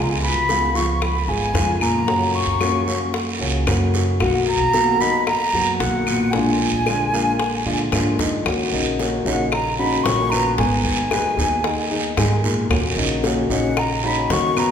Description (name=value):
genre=latin, Cuban son and guajira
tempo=113 BPM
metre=4/4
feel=straight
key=Eb minor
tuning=A4 = 439 Hz
part: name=mellow silver concert flute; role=melody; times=0.0-14.7 s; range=Gb5 to Db6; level=-22 LUFS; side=equal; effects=none
part: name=nylon-string guitar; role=accompaniment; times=0.0-14.7 s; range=B2 to Ab4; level=-24 LUFS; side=left 2 dB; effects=none
part: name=dark baby grand piano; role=arpeggios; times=0.0-14.7 s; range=Bb2 to Cb5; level=-25 LUFS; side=left 1 dB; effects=none
part: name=upright bass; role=bass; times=0.0-14.7 s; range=Ab1 to Eb3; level=-24 LUFS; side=right 1 dB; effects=none
part: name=bongos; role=percussion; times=0.2-14.7 s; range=none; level=-29 LUFS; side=left 3 dB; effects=none
part: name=guiro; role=percussion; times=0.5-14.7 s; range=none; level=-28 LUFS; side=right 5 dB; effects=none
part: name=claves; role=percussion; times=1.0-14.7 s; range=none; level=-32 LUFS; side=left 2 dB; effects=none
room=wet recital hall reverb, RT60 1.6 s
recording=recorded in a church or concert hall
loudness=-17 LUFS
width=side -8 dB against mid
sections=0.0-8.5 A section; 8.5-14.7 B section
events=drum fill 8.2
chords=0.0 Db7; 2.1 Gbmaj7; 4.2 Bmaj7; 6.3 Bb7; 8.5 Ebm7; 10.6 Abm; 12.7 Ebm7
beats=0.48 1.02 1.55 | 2.08 2.61 3.14 3.68 | 4.21 4.74 5.27 5.80 | 6.33 6.87 7.40 7.93 | 8.46 8.99 9.52 10.05 | 10.59 11.12 11.65 12.18 | 12.71 13.24 13.77 14.30